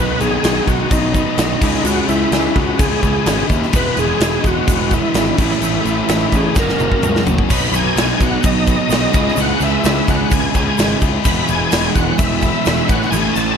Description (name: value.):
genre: classic rock.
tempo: 128 BPM.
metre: 4/4.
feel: straight.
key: B major.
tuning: A4 = 440 Hz.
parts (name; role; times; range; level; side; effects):
overdriven tonewheel organ; melody; 0.0-13.6 s; D#4 to B5; -20 LUFS; equal; slow rotary speaker, chorus vibrato, slapback echo.
crunchy overdriven guitar; riff; 0.0-13.6 s; E2 to C#4; -23 LUFS; right 1 dB; none.
distorted electric guitar; riff; 0.0-13.6 s; A2 to F#4; -24 LUFS; right 12 dB; distortion.
overdriven electric guitar; riff; 0.0-13.6 s; A2 to F#4; -23 LUFS; left 14 dB; none.
fuzz picked electric bass; bass; 0.0-13.5 s; E1 to D#2; -20 LUFS; equal; overdrive.
big rock drum kit; drums; 0.2-13.5 s; crash cymbal, kick drum, snare drum, toms; -18 LUFS; equal; none.
egg shaker; percussion; 0.2-13.5 s; none; -32 LUFS; right 19 dB; none.
room: studio reverb.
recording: lossy compression artefacts.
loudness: -13 LUFS.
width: side -7 dB against mid.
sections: 0.0-7.5 A section; 7.5-13.6 A section.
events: drum fill 6.6-7.5.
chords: 0.0 B; 1.6 C#m; 3.7 E; 5.4 A; 6.6 F#; 7.5 B; 9.1 C#m; 11.3 E; 12.9 A.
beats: 0.44 0.91 1.38 | 1.85 2.33 2.80 3.27 | 3.74 4.21 4.68 5.15 | 5.62 6.09 6.56 7.03 | 7.50 7.97 8.44 8.91 | 9.38 9.85 10.32 10.79 | 11.25 11.72 12.19 12.66 | 13.12.